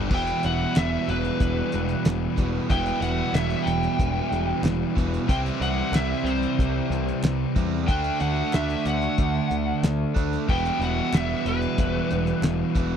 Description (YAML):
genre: classic rock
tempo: 92 BPM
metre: 4/4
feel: straight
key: E minor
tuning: A4 = 441 Hz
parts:
  - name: cranked stack guitar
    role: riff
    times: 0.0-13.0 s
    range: E2 to F#4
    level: -29 LUFS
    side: left 13 dB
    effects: overdrive
  - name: cranked stack guitar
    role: riff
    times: 0.0-13.0 s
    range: E2 to D4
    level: -28 LUFS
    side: right 12 dB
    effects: overdrive
  - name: growling picked electric bass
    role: bass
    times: 0.0-13.0 s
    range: E1 to E2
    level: -28 LUFS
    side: equal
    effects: overdrive
  - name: lead guitar through a small cranked amp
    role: melody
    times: 0.1-12.4 s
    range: B4 to G5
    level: -29 LUFS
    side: equal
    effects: overdrive, tape echo
  - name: cloth-damped thuddy drum kit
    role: drums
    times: 0.1-12.9 s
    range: crash cymbal, hi-hat, kick drum, snare drum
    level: -24 LUFS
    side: equal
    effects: none
  - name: group handclap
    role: percussion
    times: 0.8-12.6 s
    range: none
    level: -40 LUFS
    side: right 4 dB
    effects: none
room: little or no reverb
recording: dry, close 1970s-style studio recording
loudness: -22 LUFS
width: side -8 dB against mid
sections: 0.1-13.0 A section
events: none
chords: 0.1 Em; 5.3 C; 7.9 D; 10.5 Em